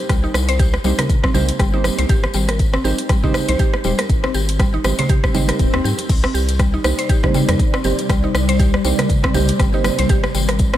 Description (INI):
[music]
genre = afro house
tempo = 120 BPM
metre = 4/4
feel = swing 57% on 16ths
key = C minor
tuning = A4 = 441 Hz
[part]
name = mallet-like synth pluck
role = arpeggios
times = 0.1-10.8 s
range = G3 to C5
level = -24 LUFS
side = left 1 dB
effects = chorus, sidechain pumping, ping-pong delay
[part]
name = round analog bass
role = bass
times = 0.1-10.8 s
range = Eb1 to Ab2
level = -20 LUFS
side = equal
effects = sidechain pumping
[part]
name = deep house drum kit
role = drums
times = 0.1-10.8 s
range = crash cymbal, hi-hat, rim click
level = -24 LUFS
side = equal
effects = overdrive
[part]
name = electronic kick drum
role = drums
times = 0.1-10.7 s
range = none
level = -17 LUFS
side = equal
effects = none
[part]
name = tambourine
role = percussion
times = 0.1-10.8 s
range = none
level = -31 LUFS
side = left 6 dB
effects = none
[part]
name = congas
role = percussion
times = 0.2-10.7 s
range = none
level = -25 LUFS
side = right 2 dB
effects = none
[part]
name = deep mellow chord stab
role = stabs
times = 0.8-10.1 s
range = Ab3 to C5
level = -25 LUFS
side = right 4 dB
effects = chorus, sidechain pumping, ping-pong delay
[part]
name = swell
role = sound effects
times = 5.3-6.1 s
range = none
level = -29 LUFS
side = equal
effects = none
[part]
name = ethereal airy pad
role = sustained chords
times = 6.8-10.8 s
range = C3 to D5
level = -23 LUFS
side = left 1 dB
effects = ensemble chorus, built-in reverb, sidechain pumping
[sound]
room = light reverb, digital ambience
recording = none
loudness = -14 LUFS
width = side -12 dB against mid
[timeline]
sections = 0.0-10.8 A section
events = swell 5.3-6.1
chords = 0.0 Cm7; 2.1 Abmaj7; 6.1 Cm7; 10.1 Abmaj7(no3)